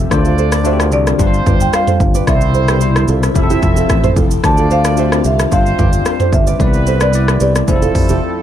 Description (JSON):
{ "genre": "afrobeats", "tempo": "111 BPM", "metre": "4/4", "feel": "straight", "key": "C major", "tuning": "A4 = 440 Hz", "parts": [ { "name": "bell-like tine electric piano", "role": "accompaniment", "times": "0.0-8.4 s", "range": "B2 to E5", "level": "-20 LUFS", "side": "left 6 dB", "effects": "auto-pan" }, { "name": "airy breathy pad", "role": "sustained chords", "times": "0.0-8.4 s", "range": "C3 to E5", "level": "-24 LUFS", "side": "equal", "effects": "chorus, phaser" }, { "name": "fingered electric bass", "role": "bass", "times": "0.0-8.2 s", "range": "F1 to D2", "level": "-15 LUFS", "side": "equal", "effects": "none" }, { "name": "warm horn section", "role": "second line", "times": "0.1-8.4 s", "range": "F3 to E5", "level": "-23 LUFS", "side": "right 2 dB", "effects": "none" }, { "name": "deep house drum kit", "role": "drums", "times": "0.1-8.2 s", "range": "hi-hat, kick drum, rim click, shaker, toms", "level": "-15 LUFS", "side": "equal", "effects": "none" }, { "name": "nylon-string guitar", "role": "riff", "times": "0.3-8.2 s", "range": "E4 to E5", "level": "-21 LUFS", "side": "right 10 dB", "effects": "digital delay" }, { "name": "marimba with medium mallets", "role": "melody", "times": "0.9-8.4 s", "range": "C5 to A5", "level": "-19 LUFS", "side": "right 1 dB", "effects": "digital delay" } ], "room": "little or no reverb", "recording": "dark, warm production", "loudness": "-11 LUFS", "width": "side -10 dB against mid", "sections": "0.0-8.4 A section", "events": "break 8.2", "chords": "0.1 Dm7; 1.2 G7sus4; 2.3 Cmaj9; 3.4 Fmaj7; 4.4 Dm7; 5.5 G7sus4; 6.6 Cmaj9; 7.7 Fmaj7", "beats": "| 0.11 0.65 1.19 1.73 | 2.27 2.81 3.35 3.90 | 4.44 4.98 5.52 6.06 | 6.60 7.14 7.68 8.22" }